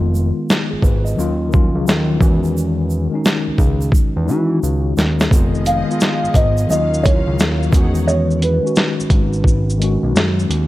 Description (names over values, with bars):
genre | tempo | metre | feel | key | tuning
lo-fi hip hop | 87 BPM | 4/4 | swing 64% on 16ths | unclear | A4 = 440 Hz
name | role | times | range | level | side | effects
mellow tine electric piano | accompaniment | 0.0-10.7 s | Eb3 to Eb5 | -20 LUFS | left 2 dB | medium stereo tremolo, cassette tape
fat analog bass | bass | 0.0-10.7 s | F1 to E3 | -18 LUFS | equal | none
egg shaker | percussion | 0.1-8.1 s | none | -36 LUFS | right 7 dB | none
boom bap sampler-style drum kit | drums | 0.5-10.7 s | hi-hat, kick drum, shaker, snare drum | -16 LUFS | equal | none
clear studio string section | sustained chords | 5.3-8.1 s | Eb3 to F#5 | -31 LUFS | equal | none
felt-muted upright piano | melody | 5.7-10.1 s | B4 to F5 | -21 LUFS | right 1 dB | none
room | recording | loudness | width
small room reverb | none | -14 LUFS | side -16 dB against mid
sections
0.0-10.7 A section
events
break 0.0-5.3; drum fill 4.6-5.3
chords
0.0 Fm7b5; 1.2 Ebm9; 2.2 Emaj13; 5.3 Fm7b5; 6.7 Ebm9; 7.7 Emaj13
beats
0.49 1.18 1.87 | 2.56 3.25 3.94 4.62 | 5.31 6.00 6.69 7.38 | 8.07 8.76 9.45 10.14